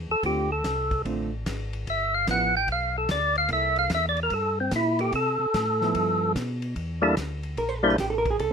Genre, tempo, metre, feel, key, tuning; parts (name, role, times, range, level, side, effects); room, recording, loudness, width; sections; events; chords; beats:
soul jazz organ trio; 147 BPM; 4/4; swing 66% on 8ths; C mixolydian; A4 = 438 Hz
mellow tonewheel organ; bass; 0.0-8.5 s; G1 to C3; -31 LUFS; equal; overdrive, chorus vibrato, slow rotary speaker
percussive tonewheel organ; melody; 0.1-8.0 s; G3 to G5; -23 LUFS; equal; slow rotary speaker, overdrive
hollow-body jazz guitar; accompaniment; 0.2-8.5 s; D3 to C5; -29 LUFS; right 4 dB
warm soul drum kit; drums; 0.2-8.5 s; hi-hat, kick drum, ride cymbal, snare drum; -35 LUFS; equal
light reverb; rough home demo mix; -23 LUFS; side -6 dB against mid
0.0-6.8 A section; 6.8-8.5 A section
tonewheel organ solo 0.0-6.8; hollow-body jazz guitar solo 6.8-8.5
0.2 Dm7; 1.9 G13; 3.5 C6; 5.9 G13; 6.8 C13 (rootless)
| 0.23 0.64 1.05 1.46 | 1.86 2.27 2.68 3.09 | 3.50 3.91 4.32 4.72 | 5.13 5.54 5.95 6.36 | 6.76 7.17 7.58 7.99 | 8.39